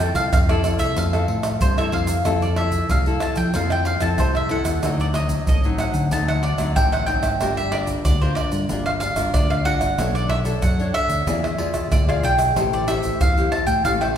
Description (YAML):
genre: samba and choro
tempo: 93 BPM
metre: 4/4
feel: straight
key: F major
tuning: A4 = 439 Hz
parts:
  - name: mandolin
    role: melody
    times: 0.0-14.1 s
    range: C5 to A5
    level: -24 LUFS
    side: equal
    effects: none
  - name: nylon-string guitar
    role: accompaniment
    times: 0.0-14.2 s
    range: A2 to D5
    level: -26 LUFS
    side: left 3 dB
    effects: none
  - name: fingered electric bass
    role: bass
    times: 0.0-14.2 s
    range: G1 to F3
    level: -24 LUFS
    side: equal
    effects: none
  - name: tube shaker, pandeiro, surdo and tamborim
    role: percussion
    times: 0.2-14.2 s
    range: none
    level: -22 LUFS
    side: right 1 dB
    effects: none
room: wet recital hall reverb, RT60 1.7 s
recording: recorded in a church or concert hall, faint mains hum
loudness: -18 LUFS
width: side -9 dB against mid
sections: 0.0-2.3 A section; 2.3-14.2 B section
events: none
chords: 0.0 Fmaj7; 4.8 D7b9; 7.4 Gm7; 10.0 Bm9; 11.3 E7b9; 12.6 Am7